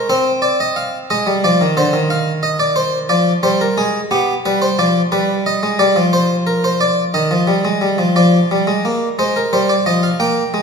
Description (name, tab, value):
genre	classical, baroque-style two-part invention for harpsichord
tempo	59 BPM (dotted quarters)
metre	12/8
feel	straight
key	F minor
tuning	A4 = 440 Hz
part	harpsichord	solo	0.0-10.6 s	D3 to G5	-13 LUFS	equal	none
room	wet recital hall reverb, RT60 1.6 s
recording	recorded in a church or concert hall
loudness	-13 LUFS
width	side -5 dB against mid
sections	0.0-8.2 A section; 8.2-10.6 B section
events	none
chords	0.1 Cm; 2.1 Fm; 4.1 G; 6.1 Cm; 8.2 Fm